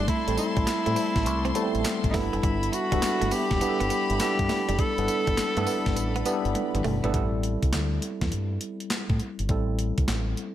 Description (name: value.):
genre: R&B, new jack swing.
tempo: 102 BPM.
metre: 4/4.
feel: swing 66% on 16ths.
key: A minor.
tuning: A4 = 440 Hz.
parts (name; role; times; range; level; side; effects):
breathy tenor saxophone; melody; 0.0-6.6 s; D#4 to A4; -28 LUFS; equal; none.
tine electric piano; accompaniment; 0.0-10.5 s; G3 to A4; -29 LUFS; equal; slow stereo tremolo.
dark studio string section; sustained chords; 0.0-7.1 s; A4 to C6; -35 LUFS; left 4 dB; none.
direct-recorded clean electric guitar; riff; 0.0-7.1 s; G3 to C4; -35 LUFS; right 6 dB; wide subtle chorus.
deep dub fingered electric bass; bass; 0.0-10.3 s; E1 to A2; -29 LUFS; equal; none.
crisp 8-bit digital drum machine; drums; 0.1-10.5 s; handclaps, hi-hat, kick drum, snare drum, tambourine, toms; -29 LUFS; equal; gated reverb.
room: light reverb, digital ambience.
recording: none.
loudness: -23 LUFS.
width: side -12 dB against mid.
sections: 0.0-7.1 A section; 7.1-10.5 B section.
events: drum fill 6.6-7.1.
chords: 0.0 Am7; 2.1 G69; 7.1 Am7.